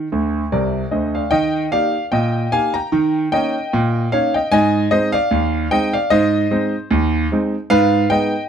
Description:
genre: ragtime piano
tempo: 75 BPM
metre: 2/4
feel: swing 55% on 16ths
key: Eb major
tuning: A4 = 440 Hz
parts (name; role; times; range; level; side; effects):
- warm concert grand piano; solo; 0.0-8.5 s; C2 to Bb5; -15 LUFS; right 1 dB; none
room: moderate small room reverb, RT60 0.6 s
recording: none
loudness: -15 LUFS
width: side -8 dB against mid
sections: 0.0-1.3 A section; 1.3-8.5 B section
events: grand piano fill 0.1-1.3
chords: 0.0 Eb5; 1.3 Eb; 2.9 Eb7; 4.5 Ab; 7.7 Abm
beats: 0.52 | 1.32 2.12 | 2.92 3.72 | 4.52 5.32 | 6.12 6.91 | 7.71

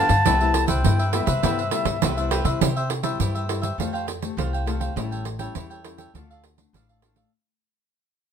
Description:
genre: samba and choro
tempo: 102 BPM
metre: 4/4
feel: straight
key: C major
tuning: A4 = 440 Hz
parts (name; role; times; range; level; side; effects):
- reedy concert flute; melody; 0.0-2.3 s; E5 to A5; -23 LUFS; left 2 dB; none
- cavaquinho; accompaniment; 0.0-7.3 s; D4 to G5; -30 LUFS; right 3 dB; none
- nylon-string guitar; accompaniment; 0.0-7.3 s; G2 to G4; -30 LUFS; left 8 dB; none
- upright bass; bass; 0.0-7.2 s; A1 to C3; -25 LUFS; left 1 dB; none
- pandeiro; percussion; 0.1-7.3 s; none; -26 LUFS; right 9 dB; none
room: moderate studio reverb, RT60 0.6 s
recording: minimal, uncompressed stereo recording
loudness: -21 LUFS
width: side -8 dB against mid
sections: 0.0-2.6 A section; 2.6-7.3 B section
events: fade-out 2.6-7.3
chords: 0.3 Cmaj7; 2.6 C; 3.8 Fadd9; 5.0 A7; 6.1 Dm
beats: | 0.26 0.84 1.43 2.02 | 2.61 3.19 3.78 4.37 | 4.96 5.55 6.14 6.73

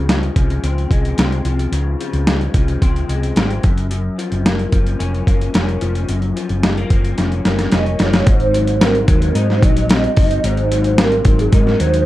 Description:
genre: indie pop, bedroom pop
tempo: 110 BPM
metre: 4/4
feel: straight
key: unclear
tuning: A4 = 439 Hz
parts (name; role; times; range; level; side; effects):
- electric guitar through a small old amp; accompaniment; 0.0-12.1 s; Gb2 to Eb4; -22 LUFS; left 4 dB; ensemble chorus, vibrato effect
- hollow-body short-scale fingered electric bass; bass; 0.0-12.1 s; F1 to Ab2; -19 LUFS; equal; none
- dusty soul sampler-style drum kit; drums; 0.1-12.1 s; hi-hat, kick drum, snare drum; -16 LUFS; equal; overdrive
- hollow clarinet-like synth lead; melody; 7.7-12.1 s; Ab4 to Eb5; -19 LUFS; right 3 dB; ensemble chorus, plate reverb, analog delay
room: moderate studio reverb, RT60 0.6 s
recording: dark, warm production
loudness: -14 LUFS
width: side -15 dB against mid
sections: 0.0-8.3 A section; 8.3-12.1 B section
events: drum fill 7.2-8.3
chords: 0.0 Dbmaj7; 3.6 Gbmaj7; 8.3 Ab7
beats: 0.10 0.64 1.18 | 1.73 2.27 2.82 3.37 | 3.91 4.46 5.00 5.54 | 6.09 6.63 7.18 7.72 | 8.27 8.81 9.36 9.90 | 10.44 10.98 11.53

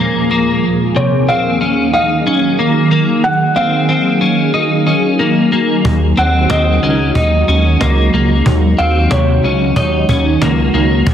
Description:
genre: dream pop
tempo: 92 BPM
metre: 4/4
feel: straight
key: unclear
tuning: A4 = 440 Hz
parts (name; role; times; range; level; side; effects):
- felt-muted upright piano; melody; 0.0-11.0 s; Bb4 to Gb5; -18 LUFS; right 1 dB; digital delay
- shimmering ambient pad; sustained chords; 0.0-11.1 s; Eb2 to Ab4; -15 LUFS; right 1 dB; chorus, built-in reverb, phaser
- clean electric guitar; arpeggios; 0.0-11.1 s; C3 to Eb4; -16 LUFS; left 3 dB; ensemble chorus, digital delay
- chorused synth bass; bass; 5.8-11.1 s; Db2 to Eb2; -14 LUFS; equal; none
- cajon; drums; 5.8-11.1 s; none; -17 LUFS; equal; none
room: moderate plate reverb, RT60 2.6 s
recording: dense, heavily limited modern master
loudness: -10 LUFS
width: side -9 dB against mid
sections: 0.0-11.1 A section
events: none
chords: 0.0 Db6/Eb (rootless); 0.6 Ebm9; 5.8 Ab7sus4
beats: | 0.63 1.28 1.94 2.59 | 3.24 3.89 4.54 5.20 | 5.85 6.50 7.15 7.80 | 8.46 9.11 9.76 10.41 | 11.07

